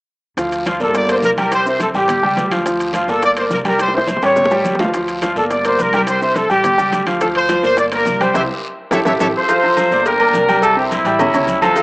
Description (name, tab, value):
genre	latin, salsa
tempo	211 BPM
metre	4/4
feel	straight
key	D minor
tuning	A4 = 438 Hz
part	clear baby grand piano	accompaniment	0.4-11.8 s	F3 to G5	-18 LUFS	equal	none
part	upright bass	bass	0.4-11.8 s	G1 to D2	-28 LUFS	equal	none
part	bongos and cowbell	percussion	0.4-11.8 s	none	-27 LUFS	left 1 dB	none
part	congas	percussion	0.4-11.8 s	none	-28 LUFS	equal	none
part	guiro	percussion	0.4-11.8 s	none	-33 LUFS	left 2 dB	none
part	maracas	percussion	0.4-11.8 s	none	-39 LUFS	right 2 dB	none
part	timbales and agogo bells	percussion	0.4-11.8 s	none	-24 LUFS	right 1 dB	none
part	clear trumpet section	melody	0.7-9.3 s	F4 to E5	-16 LUFS	equal	none
part	warm horn section	melody	9.4-11.8 s	G3 to C5	-14 LUFS	equal	none
room	wet spring reverb, RT60 2.2 s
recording	cassette tape, small speaker sound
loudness	-13 LUFS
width	side -25 dB against mid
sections	0.4-9.5 A section; 9.5-11.8 B section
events	drum fill 3.8-4.9, 8.8-9.5; band accent 8.3-9.5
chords	0.4 Dm; 0.9 Gm; 1.5 C; 2.1 A7; 2.7 Dm; 3.2 Gm; 3.8 C; 4.4 A7; 4.9 Dm; 5.5 Gm; 6.1 C; 6.6 A7; 7.2 Dm7; 7.8 Gm; 8.3 C; 8.9 A7; 9.5 Dm7; 10.1 Gm; 10.6 C; 11.2 A7